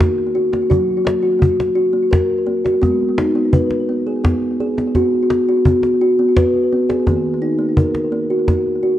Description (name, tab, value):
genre	world meditative, meditative tuned percussion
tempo	56 BPM (dotted quarters)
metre	6/8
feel	straight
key	Eb minor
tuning	A4 = 440 Hz
part	kalimba	arpeggios	0.0-9.0 s	Eb3 to Cb5	-15 LUFS	equal	ping-pong delay
part	cajon	percussion	0.0-8.9 s	none	-17 LUFS	equal	none
room	moderate echo chamber reverb, RT60 1.7 s, small room ambience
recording	worn, warbling old tape, cassette tape, warbly pitch drift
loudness	-14 LUFS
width	side -12 dB against mid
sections	0.0-9.0 A section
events	none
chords	0.0 Ebm; 0.7 Gb; 2.8 Abm; 5.0 B5; 7.1 Ebm